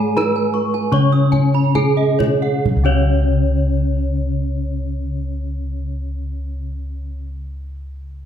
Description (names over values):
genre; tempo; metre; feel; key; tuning
Balinese gamelan; 63-84 BPM; 4/4; straight; unclear; A4 = 440 Hz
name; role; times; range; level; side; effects
gamelan-type bronze metallophone; melody; 0.0-7.3 s; Db4 to Db5; -23 LUFS; right 3 dB; none
gamelan-type bronze metallophone; accompaniment; 0.0-7.3 s; Db3 to Db4; -24 LUFS; left 4 dB; none
gamelan-type bronze metallophone; arpeggios; 0.0-7.3 s; Db5 to Eb6+30c; -28 LUFS; right 6 dB; none
gamelan-type bossed gongs; bass; 0.0-7.2 s; Db2 to Ab4+25c; -19 LUFS; equal; none
gamelan-type bronze metallophone; arpeggios; 0.2-7.3 s; Db5 to Db6; -27 LUFS; left 7 dB; tape echo
kendang; percussion; 0.2-3.1 s; none; -25 LUFS; right 2 dB; none
room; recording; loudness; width
moderate recital hall reverb, RT60 1.6 s; dark, warm production; -16 LUFS; side -9 dB against mid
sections
0.0-2.6 A section; 2.6-8.3 B section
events
slowing down 0.0-2.6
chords
none